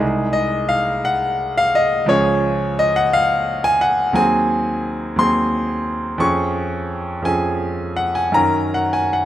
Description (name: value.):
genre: classical, romantic nocturne for solo piano.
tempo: 58 BPM (dotted quarters).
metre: 12/8.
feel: rubato.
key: Db major.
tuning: A4 = 440 Hz.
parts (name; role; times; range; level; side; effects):
bright concert grand piano; solo; 0.0-9.3 s; C2 to Db6; -16 LUFS; equal; none.
room: light reverb.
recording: close, detailed microphones.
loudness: -16 LUFS.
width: side -12 dB against mid.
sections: 0.0-9.3 A section.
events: none.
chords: 0.0 Ab/C; 2.1 Db; 4.2 Ab7/Eb; 6.2 Db/F; 8.4 Ebm7/Gb.